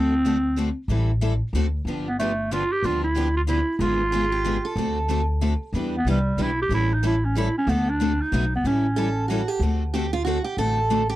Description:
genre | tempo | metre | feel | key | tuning
acoustic string swing (jazz manouche) | 186 BPM | 3/4 | swing 61% on 8ths | D mixolydian | A4 = 439 Hz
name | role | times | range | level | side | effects
growling clarinet | melody | 0.0-9.3 s | G3 to G4 | -23 LUFS | right 1 dB | none
picked steel-string acoustic guitar | accompaniment | 0.0-11.0 s | B2 to A4 | -28 LUFS | left 7 dB | none
picked steel-string acoustic guitar | accompaniment | 0.0-11.0 s | B2 to B4 | -30 LUFS | right 6 dB | none
upright bass | bass | 0.0-11.2 s | G1 to E2 | -25 LUFS | equal | none
picked steel-string acoustic guitar | second line | 4.1-5.3, 9.0-11.2 s | F4 to A4 | -27 LUFS | right 3 dB | none
room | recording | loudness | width
light reverb | dry, close 1970s-style studio recording | -21 LUFS | side -15 dB against mid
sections
0.0-9.6 A section; 9.6-11.2 B section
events
steel-string acoustic guitar solo 9.6-11.2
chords
0.0 D7; 0.9 Am7; 1.5 D7; 1.9 G7; 3.8 G#dim7; 4.8 D7; 5.7 Em7; 6.7 A7; 7.7 D7; 8.3 B7; 8.6 A7; 9.6 D7

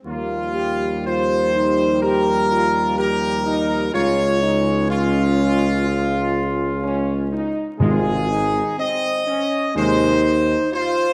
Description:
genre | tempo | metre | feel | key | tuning
classical, ceremonial fanfare | 62 BPM | 4/4 | straight | Ab major | A4 = 440 Hz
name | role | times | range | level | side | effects
mellow trombone section | sustained chords | 0.0-10.1 s | C3 to Ab3 | -29 LUFS | equal | none
clear trumpet section | melody | 0.1-11.1 s | F4 to Eb5 | -23 LUFS | equal | none
mellow French horn section | sustained chords | 0.1-11.1 s | Bb3 to G4 | -26 LUFS | equal | none
warm tuba | bass | 0.1-10.6 s | Ab1 to Eb2 | -25 LUFS | equal | none
timpani | percussion | 7.8-9.2 s | Ab2 | -26 LUFS | equal | none
room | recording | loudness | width
wet scoring stage reverb, RT60 1.8 s | vinyl crackle | -19 LUFS | mono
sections
0.0-11.1 A section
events
none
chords
0.1 Ebadd9; 3.9 Db; 7.8 Ab

